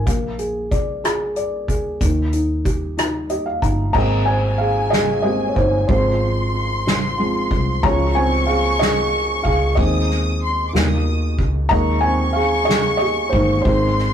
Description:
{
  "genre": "six-eight pop ballad",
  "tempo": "62 BPM (dotted quarters)",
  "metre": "6/8",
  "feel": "straight",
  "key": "Ab major",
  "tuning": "A4 = 440 Hz",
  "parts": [
    { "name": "felt-muted upright piano", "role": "accompaniment", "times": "0.0-14.1 s", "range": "Eb3 to Bb5", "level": "-20 LUFS", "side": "equal", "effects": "none" },
    { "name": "vintage muted fingered electric bass", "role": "bass", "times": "0.0-14.1 s", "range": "G1 to Eb2", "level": "-22 LUFS", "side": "equal", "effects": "none" },
    { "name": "soft-mallet drum kit", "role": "drums", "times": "0.1-14.1 s", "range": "crash cymbal, hi-hat, kick drum, ride cymbal, rim click, snare drum", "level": "-23 LUFS", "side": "equal", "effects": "none" },
    { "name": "rich studio violin section", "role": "second line", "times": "4.0-14.1 s", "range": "Ab5 to Eb6", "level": "-24 LUFS", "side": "left 1 dB", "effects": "none" }
  ],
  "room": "wet booth ambience, RT60 0.2 s",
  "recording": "rough rehearsal-room recording, warm saturation",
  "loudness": "-16 LUFS",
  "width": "side -9 dB against mid",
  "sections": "0.0-4.0 A section; 4.0-14.1 B section",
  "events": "felt piano fill 3.0-4.0; felt piano solo 4.0-14.1",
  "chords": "0.1 Bb7; 2.0 Eb; 4.0 Abadd9; 5.9 Fm/Ab; 7.8 Db; 9.8 Ab/Eb; 10.7 Eb; 11.7 Ebsus4"
}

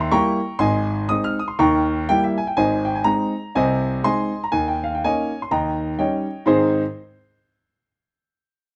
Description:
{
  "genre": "jazz, stride piano",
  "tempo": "123 BPM",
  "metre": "4/4",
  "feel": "swing 60% on 8ths",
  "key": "Ab major",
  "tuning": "A4 = 440 Hz",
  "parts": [
    { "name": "warm concert grand piano", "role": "solo", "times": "0.0-6.8 s", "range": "Ab1 to F6", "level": "-21 LUFS", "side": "equal", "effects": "none" }
  ],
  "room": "little or no reverb",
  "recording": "recorded outdoors, with no room sound",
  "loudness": "-21 LUFS",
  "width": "mono",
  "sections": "0.0-6.5 A section; 6.5-8.4 B section",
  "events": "none",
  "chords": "0.0 Eb7b9; 0.6 Ab; 1.6 Eb7b9; 2.6 Ab; 3.5 Ab/C; 4.5 Eb5; 5.5 Eb7; 6.5 Ab"
}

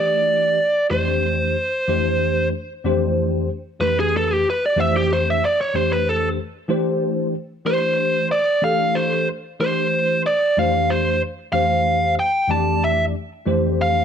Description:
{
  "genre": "jazz",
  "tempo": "62 BPM (dotted quarters)",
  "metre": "6/8",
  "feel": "straight",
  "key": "F lydian",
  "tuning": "A4 = 439 Hz",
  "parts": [
    { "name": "biting lead guitar", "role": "melody", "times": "0.0-14.0 s", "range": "G4 to A5", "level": "-19 LUFS", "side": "right 1 dB", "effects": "overdrive" },
    { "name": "bell-like tine electric piano", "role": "accompaniment", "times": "0.0-14.0 s", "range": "F2 to D5", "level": "-21 LUFS", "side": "left 1 dB", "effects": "ensemble chorus" }
  ],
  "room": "moderate studio reverb, RT60 0.8 s",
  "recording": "dark, warm production",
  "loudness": "-18 LUFS",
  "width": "side -8 dB against mid",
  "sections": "0.0-2.8 A section; 2.8-14.0 B section",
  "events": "lead electric guitar solo 2.8-14.0",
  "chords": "0.0 A7(no3); 0.9 Fmaj9; 2.8 Fmaj7; 6.7 Gsus4; 10.6 Fmaj7"
}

